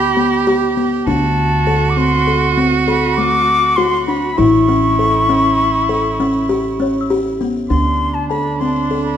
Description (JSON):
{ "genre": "contemporary instrumental, contemporary", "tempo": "199 BPM (eighths)", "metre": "11/8", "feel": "straight", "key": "D major", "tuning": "A4 = 435 Hz", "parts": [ { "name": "concert flute", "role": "melody", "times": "0.0-9.2 s", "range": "A5 to D6", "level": "-18 LUFS", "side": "left 2 dB", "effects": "none" }, { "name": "rich cello", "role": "second line", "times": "0.0-9.2 s", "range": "D4 to G4", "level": "-20 LUFS", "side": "right 7 dB", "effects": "none" }, { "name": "buzzing kalimba", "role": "arpeggios", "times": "0.0-9.1 s", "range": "A3 to A4", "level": "-17 LUFS", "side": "left 3 dB", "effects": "none" }, { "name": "upright bass", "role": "bass", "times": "0.0-9.2 s", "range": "A1 to D2", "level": "-21 LUFS", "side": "right 2 dB", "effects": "none" }, { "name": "small celesta", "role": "texture", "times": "0.0-1.0, 6.8-9.2 s", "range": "C#5 to E6", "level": "-28 LUFS", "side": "left 8 dB", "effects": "none" } ], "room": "moderate recital hall reverb, RT60 1.5 s", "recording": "none", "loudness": "-13 LUFS", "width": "side -9 dB against mid", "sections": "0.0-7.7 A section; 7.7-9.2 B section", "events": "none", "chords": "0.0 G/D; 1.1 D7; 4.4 A7; 7.7 D7(no3)" }